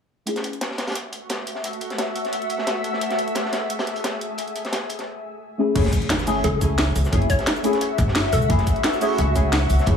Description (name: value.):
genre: liquid drum and bass.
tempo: 175 BPM.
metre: 4/4.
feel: straight.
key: F# minor.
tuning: A4 = 440 Hz.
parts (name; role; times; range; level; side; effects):
deep mellow chord stab; accompaniment; 0.3-10.0 s; A3 to G#4; -24 LUFS; left 1 dB; chorus, phaser, vintage 12-bit sampler grit, digital delay.
shimmering ambient pad; sustained chords; 0.9-10.0 s; A3 to E5; -27 LUFS; left 1 dB; chorus, built-in reverb, sidechain pumping.
crunchy breakbeat drum kit; drums; 0.3-10.0 s; hi-hat, snare drum; -30 LUFS; equal; high-pass filter on hats, high-pass filter on snare, high-pass filter on room.
drum and bass drum kit; drums; 0.3-9.9 s; cabasa, crash cymbal, hi-hat, snare drum; -27 LUFS; equal; overdrive.
upright bass; bass; 5.8-10.0 s; F#1 to C#2; -21 LUFS; equal; none.
electronic kick drum; drums; 5.8-9.9 s; none; -22 LUFS; equal; overdrive.
impact; sound effects; 5.8-7.1 s; none; -30 LUFS; equal; none.
hollow square pluck; melody; 6.4-8.6 s; A4 to C#5; -29 LUFS; equal; chorus, digital delay.
room: light reverb, digital ambience.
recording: small room ambience.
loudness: -20 LUFS.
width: side -7 dB against mid.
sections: 0.3-5.8 A section; 5.8-10.0 B section.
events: drop 5.8-10.0; impact 5.8-7.1.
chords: 0.3 F#m7; 5.6 Amaj7; 5.8 F#m7.